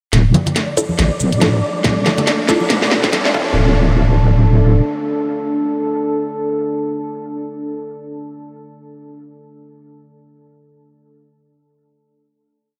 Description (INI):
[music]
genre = deep dubstep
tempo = 140 BPM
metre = 4/4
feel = swing 58% on 16ths, half-time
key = D minor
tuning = A4 = 438 Hz
[part]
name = deep dark ambient pad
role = sustained chords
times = 1.6-7.8 s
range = D4 to A4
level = -24 LUFS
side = equal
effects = chorus, built-in reverb
[part]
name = wobble bass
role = bass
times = 0.1-4.8 s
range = D1 to C2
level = -16 LUFS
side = equal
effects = chorus
[part]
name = garage drum kit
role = drums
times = 0.1-3.3 s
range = hi-hat, shaker, snare drum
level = -22 LUFS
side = equal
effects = none
[part]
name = riser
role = sound effects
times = 1.3-3.6 s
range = none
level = -28 LUFS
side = equal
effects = none
[part]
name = flickering grainy texture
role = texture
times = 0.5-3.6 s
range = D5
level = -28 LUFS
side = equal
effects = built-in reverb, analog chorus
[part]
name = congas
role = percussion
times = 0.3-3.4 s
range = none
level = -23 LUFS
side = equal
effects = dub echo
[part]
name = filtered dub chord stab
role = stabs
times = 0.8-7.8 s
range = D4 to A4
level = -26 LUFS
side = equal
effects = phaser, dub echo
[part]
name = electronic kick drum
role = drums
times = 1.8-3.4 s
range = none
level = -24 LUFS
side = equal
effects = none
[sound]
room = wet huge ambient reverb, RT60 6.3 s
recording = dreamy mix soaked in reverb, high-pass filter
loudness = -16 LUFS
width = mono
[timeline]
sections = 0.1-3.6 build; 3.6-7.0 final hit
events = build-up 0.1-3.6; drum fill 0.1-3.6; filter sweep on synth stab 0.1-3.6; filter sweep 0.1-3.6; riser 1.3-3.6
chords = 0.1 Dmadd9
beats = | 0.13 0.56 0.99 1.42 | 1.84 2.27 2.70 3.13 | 3.56 3.99 4.42 4.84 | 5.27 5.70 6.13 6.56